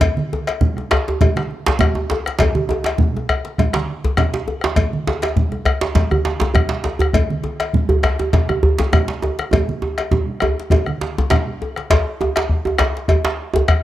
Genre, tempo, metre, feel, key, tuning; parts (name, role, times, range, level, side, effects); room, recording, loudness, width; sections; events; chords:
west african traditional, West African drum ensemble; 101 BPM; 4/4; swing 54% on 16ths
bombo; percussion; 0.0-13.8 s; -18 LUFS; left 1 dB
congas; percussion; 0.0-11.8 s; -23 LUFS; right 4 dB
cowbell; percussion; 0.0-13.8 s; -24 LUFS; left 4 dB
djembe; percussion; 0.0-13.7 s; -22 LUFS; left 2 dB
djembe; percussion; 0.9-13.7 s; -20 LUFS; right 3 dB
small room ambience; dry, close 1970s-style studio recording; -16 LUFS; side -14 dB against mid
0.0-11.9 A section; 11.9-13.8 B section
drum fill 9.5-11.9